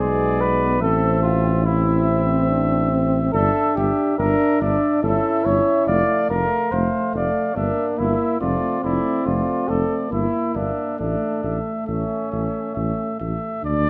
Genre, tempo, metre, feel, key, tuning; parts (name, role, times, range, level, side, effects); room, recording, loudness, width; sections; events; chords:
classical, brass quintet; 71 BPM; 3/4; straight; A minor; A4 = 444 Hz
mellow trumpet; melody; 0.0-13.9 s; D5 to F5; -30 LUFS; equal
warm flugelhorn; second line; 0.0-13.2 s; C#4 to D5; -25 LUFS; equal
clear trombone; accompaniment; 0.0-13.6 s; A3 to D4; -29 LUFS; equal
warm French horn; accompaniment; 0.0-13.9 s; G#3 to E4; -28 LUFS; equal
dark tuba; bass; 0.0-13.9 s; F1 to D2; -26 LUFS; equal
moderate recital hall reverb, RT60 1.3 s; -21 LUFS; mono
0.0-13.6 A section
0.0 G#dim/B; 0.8 Am; 3.3 Gm69; 5.0 A7/G; 5.9 F6; 7.6 Edim/G; 8.4 Dm/F; 10.1 Em7b5/G; 11.0 A